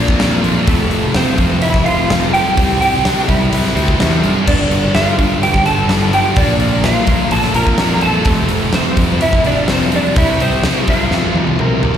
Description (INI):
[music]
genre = quiet-loud alternative rock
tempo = 126 BPM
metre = 4/4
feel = straight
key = unclear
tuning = A4 = 435 Hz
[part]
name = clean electric guitar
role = melody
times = 0.0-12.0 s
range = A3 to Bb5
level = -18 LUFS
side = right 2 dB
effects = ensemble chorus, slapback echo, analog delay
[part]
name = thick fuzz guitar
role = riff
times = 0.0-12.0 s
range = F2 to C4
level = -22 LUFS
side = left 10 dB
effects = distortion, slapback echo
[part]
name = thick fuzz guitar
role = riff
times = 0.0-12.0 s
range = F2 to C4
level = -23 LUFS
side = right 9 dB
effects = distortion
[part]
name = thick fuzz guitar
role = riff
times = 0.0-12.0 s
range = F2 to C4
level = -21 LUFS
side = left 1 dB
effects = distortion, slapback echo
[part]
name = fuzz fingered electric bass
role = bass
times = 0.0-11.9 s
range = F1 to G2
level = -18 LUFS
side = equal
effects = overdrive
[part]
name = huge arena drum kit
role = drums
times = 0.1-12.0 s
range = crash cymbal, hi-hat, kick drum, snare drum, toms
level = -17 LUFS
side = equal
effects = none
[sound]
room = light reverb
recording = live gig heard through the venue's PA, recital hall reverb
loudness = -11 LUFS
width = side -9 dB against mid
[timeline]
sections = 0.0-12.0 A section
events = drum fill 11.1-12.0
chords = 0.0 Bb; 0.7 F; 2.6 C; 4.5 G5; 6.4 Bb; 8.3 F; 10.2 C; 11.1 F5